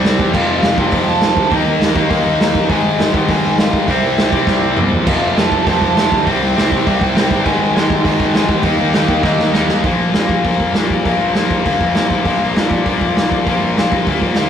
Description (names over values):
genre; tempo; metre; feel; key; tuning
punk rock; 201 BPM; 4/4; straight; unclear; A4 = 440 Hz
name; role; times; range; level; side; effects
cranked stack guitar; riff; 0.0-14.5 s; F2 to Eb4; -25 LUFS; right 2 dB; overdrive
tight distorted guitar; riff; 0.0-14.5 s; F2 to Eb4; -17 LUFS; left 5 dB; distortion
tight distorted guitar; riff; 0.0-9.8 s; F2 to Eb4; -23 LUFS; right 7 dB; distortion
fuzz picked electric bass; bass; 0.0-14.5 s; F1 to F2; -22 LUFS; equal; overdrive
raw garage drum kit; drums; 0.0-14.4 s; crash cymbal, hi-hat, kick drum, snare drum, toms; -16 LUFS; right 1 dB; none
lead guitar through a small cranked amp; melody; 0.3-14.5 s; G4 to C6; -23 LUFS; right 4 dB; overdrive
room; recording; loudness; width
light reverb; rough rehearsal-room recording, warm saturation; -12 LUFS; side -8 dB against mid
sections
0.0-5.1 A section; 5.1-9.9 B section; 9.9-14.5 C section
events
drum fill 4.5-5.1, 9.3-9.9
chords
0.3 F; 1.5 Eb5; 2.7 Ab; 3.9 C; 5.1 F; 6.3 C; 7.5 Ab; 8.7 Eb; 9.9 Bb5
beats
0.04 | 0.34 0.63 0.93 1.22 | 1.52 1.81 2.11 2.40 | 2.70 3.00 3.29 3.59 | 3.89 4.18 4.48 4.78 | 5.08 5.37 5.67 5.97 | 6.27 6.56 6.86 7.16 | 7.46 7.76 8.06 8.36 | 8.65 8.96 9.25 9.55 | 9.86 10.15 10.46 10.76 | 11.06 11.36 11.66 11.96 | 12.26 12.56 12.86 13.16 | 13.46 13.77 14.07 14.37